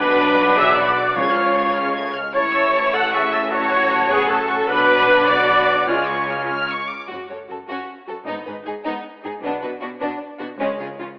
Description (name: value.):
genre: cinematic, heroic adventure film score.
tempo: 102 BPM (dotted quarters).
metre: 6/8.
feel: straight.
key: F# minor.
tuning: A4 = 440 Hz.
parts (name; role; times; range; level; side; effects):
warm symphonic violin section; melody; 0.0-11.1 s; C#4 to G#6; -26 LUFS; equal; none.
clear oboe; second line; 0.0-6.9 s; E#5 to A5; -24 LUFS; equal; none.
mellow clarinet; second line; 0.0-6.5 s; G#3 to A4; -29 LUFS; equal; none.
mellow hollow concert flute; second line; 0.0-6.9 s; C#6 to D6; -24 LUFS; equal; none.
rich symphonic violin section; second line; 0.0-11.1 s; G#3 to A4; -28 LUFS; equal; none.
rich symphonic viola section; accompaniment; 0.0-11.1 s; C#4 to F#5; -21 LUFS; equal; none.
warm French horn section; sustained chords; 0.0-6.9 s; E3 to D4; -29 LUFS; equal; none.
warm trumpet section; stabs; 0.0-6.5 s; E#4 to F#5; -21 LUFS; equal; none.
bright symphonic double bass section; bass; 0.0-10.8 s; F#1 to C#2; -33 LUFS; equal; none.
clear symphonic cello section; bass; 0.0-11.1 s; F#2 to C#3; -30 LUFS; equal; none.
timpani; percussion; 1.2-1.7, 10.6-11.2 s; C#3; -36 LUFS; equal; none.
room: wet scoring stage reverb, RT60 1.6 s.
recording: telephone sound.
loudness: -15 LUFS.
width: side -30 dB against mid.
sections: 0.0-7.1 A section; 7.1-11.2 B section.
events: none.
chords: 0.0 Bm; 1.2 C#; 2.4 A; 3.5 F#m/A; 4.7 Bm; 5.9 C#; 7.1 F#5; 8.3 G#m; 9.4 Bm; 10.6 C#.